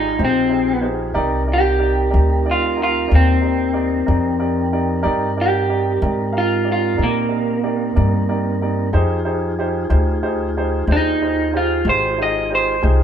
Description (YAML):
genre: slow blues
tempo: 62 BPM (dotted quarters)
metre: 12/8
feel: straight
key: C minor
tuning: A4 = 440 Hz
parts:
  - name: electric guitar through a small old amp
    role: melody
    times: 0.0-12.8 s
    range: Bb3 to Eb5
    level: -18 LUFS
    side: right 1 dB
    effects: spring reverb
  - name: warm upright piano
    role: accompaniment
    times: 0.0-13.0 s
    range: Eb4 to F5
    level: -24 LUFS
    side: right 2 dB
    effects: none
  - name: mellow tonewheel organ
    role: sustained chords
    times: 0.0-13.0 s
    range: C4 to Bb4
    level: -26 LUFS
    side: right 1 dB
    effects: fast rotary speaker
  - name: upright bass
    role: bass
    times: 0.0-13.0 s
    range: Ab1 to Bb2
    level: -20 LUFS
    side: left 1 dB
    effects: none
room: light reverb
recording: band playing live in one room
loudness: -16 LUFS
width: side -8 dB against mid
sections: 0.0-13.0 A section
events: clean electric guitar solo 0.0-13.0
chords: 0.0 Fm7; 1.2 Cm7; 8.9 Fm7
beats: 0.20 | 1.17 2.15 3.12 4.09 | 5.06 6.03 7.00 7.97 | 8.94 9.91 10.88 11.85 | 12.82